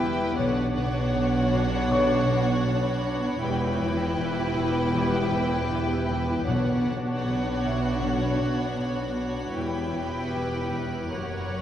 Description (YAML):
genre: cinematic, suspense film score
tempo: 78 BPM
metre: 4/4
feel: straight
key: B minor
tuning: A4 = 440 Hz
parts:
  - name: warm symphonic violin section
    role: melody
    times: 0.0-11.6 s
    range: F#5 to G5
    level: -34 LUFS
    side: left 2 dB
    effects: none
  - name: warm symphonic violin section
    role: second line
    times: 0.0-11.6 s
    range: A#4 to C#5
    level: -32 LUFS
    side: left 3 dB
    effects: none
  - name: rich studio viola section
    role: accompaniment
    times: 0.0-11.6 s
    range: D4 to C#5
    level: -32 LUFS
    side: right 1 dB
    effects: none
  - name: icy glass pad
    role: sustained chords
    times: 0.0-11.6 s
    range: F#4 to C#6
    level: -35 LUFS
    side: left 1 dB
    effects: chorus, built-in reverb
  - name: warm French horn section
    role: sustained chords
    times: 0.0-11.4 s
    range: D3 to C#5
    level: -34 LUFS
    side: left 2 dB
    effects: none
  - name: concert harp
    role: riff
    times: 0.0-11.6 s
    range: E2 to B3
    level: -33 LUFS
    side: left 5 dB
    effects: none
  - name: rich symphonic double bass section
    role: bass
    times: 0.0-11.6 s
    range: E1 to B1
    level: -31 LUFS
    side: right 3 dB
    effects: none
  - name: warm chamber cello section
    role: bass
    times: 0.0-11.6 s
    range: E2 to B2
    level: -29 LUFS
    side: right 2 dB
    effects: none
  - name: warm baby grand piano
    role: texture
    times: 1.9-11.2 s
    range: E5 to C#6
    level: -38 LUFS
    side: left 1 dB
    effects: none
  - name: timpani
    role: percussion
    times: 6.5-7.6 s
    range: B2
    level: -32 LUFS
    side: left 1 dB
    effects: none
room: wet recital hall reverb, RT60 1.5 s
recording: worn, warbling old tape, cassette tape, warbly pitch drift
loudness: -23 LUFS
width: side -10 dB against mid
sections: 0.0-11.6 A section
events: none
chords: 0.4 Bmadd9; 3.4 Em; 6.5 Bmadd9; 9.6 Em